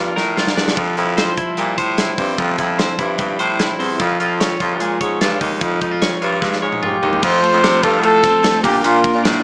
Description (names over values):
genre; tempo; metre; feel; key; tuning
jangly indie pop; 148 BPM; 4/4; straight; F major; A4 = 440 Hz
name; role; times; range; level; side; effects
twelve-string electric guitar; arpeggios; 0.0-9.4 s; Bb2 to Db5; -23 LUFS; equal; none
raspy baritone saxophone; bass; 0.0-9.4 s; Eb2 to C3; -22 LUFS; equal; none
big rock drum kit; drums; 0.2-9.3 s; crash cymbal, hi-hat, kick drum, ride cymbal, snare drum, toms; -24 LUFS; equal; none
breathy trumpet; melody; 6.8-9.2 s; F4 to C5; -17 LUFS; equal; none
picked twelve-string acoustic guitar; accompaniment; 7.2-9.4 s; Bb2 to F4; -25 LUFS; equal; plate reverb
room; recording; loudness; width
moderate studio reverb, RT60 0.7 s; small speaker sound; -17 LUFS; mono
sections
0.0-7.2 A section; 7.2-9.4 B section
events
drum fill 0.0-0.8, 6.4-7.2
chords
0.0 Bb; 0.8 C/F; 4.0 Dbadd9; 7.2 F; 8.6 Bb